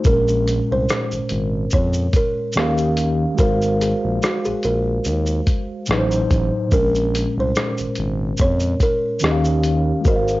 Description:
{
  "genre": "lo-fi hip hop",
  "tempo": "72 BPM",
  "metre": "4/4",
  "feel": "swing 56% on 16ths",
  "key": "Bb minor",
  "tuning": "A4 = 440 Hz",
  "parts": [
    { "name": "mellow tine electric piano", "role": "accompaniment", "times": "0.0-10.4 s", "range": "A2 to F5", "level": "-22 LUFS", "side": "equal", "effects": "medium stereo tremolo, low-pass filter, cassette tape" },
    { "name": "lo-fi sampler-style drum kit", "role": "drums", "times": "0.0-10.4 s", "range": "hi-hat, kick drum, rim click, shaker", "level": "-20 LUFS", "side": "equal", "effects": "vintage 12-bit sampler grit, cassette tape" },
    { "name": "buzzing kalimba", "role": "melody", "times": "0.1-10.4 s", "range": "Gb4 to Db5", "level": "-23 LUFS", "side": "right 1 dB", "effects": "low-pass filter, analog delay" },
    { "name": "smooth gliding synth bass", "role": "bass", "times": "0.1-10.4 s", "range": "Ab1 to F2", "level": "-22 LUFS", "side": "equal", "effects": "none" }
  ],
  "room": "light reverb",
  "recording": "home recording on cassette, low-pass filter, nothing above 7.6 kHz",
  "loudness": "-17 LUFS",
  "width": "side -18 dB against mid",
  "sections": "0.1-10.4 A section",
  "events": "none",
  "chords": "0.1 Bbm9; 2.6 Eb9; 3.4 Ab13; 5.9 Adim7; 6.7 Bbm9; 9.2 Eb9",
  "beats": "| 0.06 0.89 1.72 2.56 | 3.39 4.22 5.05 5.89 | 6.72 7.55 8.39 9.22 | 10.05"
}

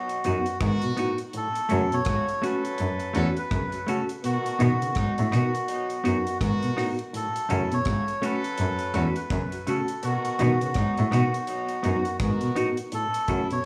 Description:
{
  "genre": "roots reggae",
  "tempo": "83 BPM",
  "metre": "4/4",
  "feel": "swing 60% on 16ths",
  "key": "F# dorian",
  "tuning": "A4 = 439 Hz",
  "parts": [
    { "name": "melodica", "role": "melody", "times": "0.0-13.7 s", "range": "F#4 to C#5", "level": "-32 LUFS", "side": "equal", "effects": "tape echo" },
    { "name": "warm horn section", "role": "second line", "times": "0.0-13.6 s", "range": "B2 to A4", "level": "-37 LUFS", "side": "equal", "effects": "tape echo" },
    { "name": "deep reggae drum kit", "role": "drums", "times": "0.1-13.6 s", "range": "hi-hat, kick drum, rim click", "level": "-36 LUFS", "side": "equal", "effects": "none" },
    { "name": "semi-hollow electric guitar", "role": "accompaniment", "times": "0.2-13.4 s", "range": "A3 to F#4", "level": "-37 LUFS", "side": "equal", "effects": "tape echo" },
    { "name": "mellow reed electric piano", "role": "stabs", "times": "0.2-13.5 s", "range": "A3 to F#4", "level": "-33 LUFS", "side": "equal", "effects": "fast tremolo" },
    { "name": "clear cello", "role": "bass", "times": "0.3-13.4 s", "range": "E2 to B2", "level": "-28 LUFS", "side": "equal", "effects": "none" },
    { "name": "overdriven clav", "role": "arpeggios", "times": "0.6-13.6 s", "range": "A2 to D#3", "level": "-35 LUFS", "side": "equal", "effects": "phaser" }
  ],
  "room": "light reverb, studio ambience",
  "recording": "studio reverb",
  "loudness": "-26 LUFS",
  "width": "mono",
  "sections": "0.0-13.7 A section",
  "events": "none",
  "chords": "0.0 B; 1.3 F#m; 4.2 B; 7.1 F#m; 10.0 B; 12.9 F#m",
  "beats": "0.61 | 1.34 2.06 2.79 3.51 | 4.24 4.96 5.69 6.41 | 7.13 7.86 8.58 9.31 | 10.03 10.76 11.48 12.20 | 12.93 13.65"
}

